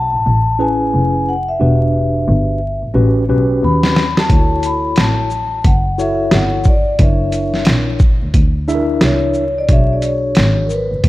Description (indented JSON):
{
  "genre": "hip hop, jazz-hop",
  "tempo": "89 BPM",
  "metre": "4/4",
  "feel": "swing 61% on 16ths",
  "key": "unclear",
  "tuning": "A4 = 443 Hz",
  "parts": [
    { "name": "vibraphone with soft mallets", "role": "melody", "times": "0.0-11.1 s", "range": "A#4 to B5", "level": "-19 LUFS", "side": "left 2 dB", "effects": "none" },
    { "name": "warm double bass", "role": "bass", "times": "0.0-11.1 s", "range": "E1 to D#2", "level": "-17 LUFS", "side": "equal", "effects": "none" },
    { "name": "mellow tine electric piano", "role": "accompaniment", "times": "0.6-10.7 s", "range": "C#4 to E5", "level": "-19 LUFS", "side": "left 1 dB", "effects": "medium stereo tremolo" },
    { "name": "boom bap sampler-style drum kit", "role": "drums", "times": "3.8-11.1 s", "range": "hi-hat, kick drum, shaker, snare drum", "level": "-14 LUFS", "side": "equal", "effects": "vintage 12-bit sampler grit" }
  ],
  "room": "light reverb",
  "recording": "dark, warm production, vinyl crackle, faint mains hum",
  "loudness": "-12 LUFS",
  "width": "side -17 dB against mid",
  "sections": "0.0-11.1 A section",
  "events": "drum fill 3.0-4.3",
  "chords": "0.0 F#m9 (rootless); 1.6 Em7; 3.0 A13; 4.3 Dmaj9; 7.0 F#7b13; 9.7 Bm69",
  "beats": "0.25 0.93 | 1.60 2.28 2.95 3.62 | 4.30 4.97 5.65 6.32 | 7.00 7.67 8.34 9.02 | 9.69 10.37 11.04"
}